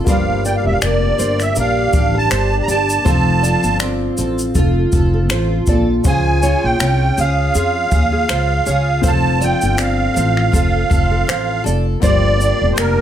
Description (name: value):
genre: acoustic pop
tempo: 80 BPM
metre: 4/4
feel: swing 55% on 16ths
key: F major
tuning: A4 = 440 Hz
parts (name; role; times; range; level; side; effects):
- clear upright piano; accompaniment; 0.0-13.0 s; Bb3 to F5; -27 LUFS; left 7 dB; none
- picked steel-string acoustic guitar; accompaniment; 0.0-13.0 s; G2 to A4; -21 LUFS; equal; double-tracked left and right
- musette accordion; melody; 0.1-13.0 s; Bb4 to Bb5; -18 LUFS; right 3 dB; none
- nylon-string guitar; arpeggios; 0.1-13.0 s; Ab4 to D5; -26 LUFS; right 4 dB; tape echo
- upright bass; bass; 0.1-13.0 s; E1 to F2; -18 LUFS; equal; none
- jazz brush drum kit; drums; 0.1-13.0 s; finger snaps, kick drum, shaker; -19 LUFS; equal; none
room: light reverb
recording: none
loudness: -13 LUFS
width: side -10 dB against mid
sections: 0.0-13.0 A section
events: none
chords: 0.1 Gm7; 3.1 F; 6.1 Db; 9.0 F; 12.0 Gm7